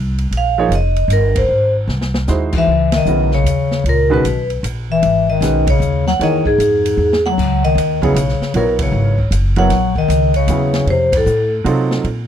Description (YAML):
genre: modal jazz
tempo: 154 BPM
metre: 3/4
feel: swing 64% on 8ths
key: C# dorian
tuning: A4 = 441 Hz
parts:
  - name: upright bass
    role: bass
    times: 0.0-12.3 s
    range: F1 to C3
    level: -18 LUFS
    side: equal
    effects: none
  - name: open jazz drum kit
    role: drums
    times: 0.2-12.2 s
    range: crash cymbal, hi-hat, kick drum, ride cymbal, snare drum, toms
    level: -25 LUFS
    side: equal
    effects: none
  - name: vibraphone with medium hard mallets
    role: melody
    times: 0.4-11.5 s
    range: G#4 to F#5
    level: -17 LUFS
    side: right 1 dB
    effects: none
  - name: warm concert grand piano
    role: accompaniment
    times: 0.6-12.1 s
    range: C#3 to Db5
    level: -19 LUFS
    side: right 5 dB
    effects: none
  - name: warm bass clarinet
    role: second line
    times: 2.6-11.5 s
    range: G#2 to F#3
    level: -19 LUFS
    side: left 9 dB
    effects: none
room: little or no reverb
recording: dry, close 1970s-style studio recording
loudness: -13 LUFS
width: side -9 dB against mid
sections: 0.0-2.7 A section; 2.7-12.0 B section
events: band accent 1.3, 2.9, 5.6, 8.7, 11.1; drum fill 1.9-2.3, 7.0-7.4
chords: 0.0 Bbsus4; 1.5 Ab7b13; 2.7 C#m9; 7.4 D#m7; 10.9 F7b9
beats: | 0.33 0.72 1.11 | 1.50 1.90 2.29 | 2.68 3.07 3.46 | 3.85 4.25 4.64 | 5.03 5.42 5.81 | 6.20 6.59 6.98 | 7.37 7.76 8.15 | 8.54 8.93 9.32 | 9.71 10.10 10.49 | 10.88 11.27 11.66 | 12.05